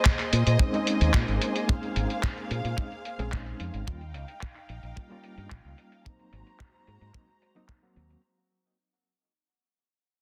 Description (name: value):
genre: nu-disco, nu disco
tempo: 110 BPM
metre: 4/4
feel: straight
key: Bb minor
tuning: A4 = 440 Hz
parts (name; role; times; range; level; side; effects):
- dark symphonic string section; sustained chords; 0.0-8.2 s; Ab3 to Bb5; -36 LUFS; equal; sidechain pumping
- dusty soul sampler-style drum kit; drums; 0.0-8.2 s; handclaps, hi-hat; -34 LUFS; equal; overdrive, low-pass filter on hats, low-pass filter on snare
- kick drum; drums; 0.1-7.8 s; none; -27 LUFS; equal; soft clipping on snare
- fingered electric bass with an envelope filter; bass; 0.3-8.1 s; Ab1 to Bb2; -30 LUFS; equal; none
- reed electric piano; accompaniment; 0.6-8.2 s; Gb3 to Ab4; -36 LUFS; equal; fast tremolo, vintage 12-bit sampler grit, sidechain pumping, dub echo
room: light reverb, studio ambience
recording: dense, heavily limited modern master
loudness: -27 LUFS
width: mono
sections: 0.0-8.2 A section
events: fade-out 0.0-8.2; filter sweep on drum 0.0-8.2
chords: 0.0 Bbm11; 3.9 Eb9; 6.1 Ab9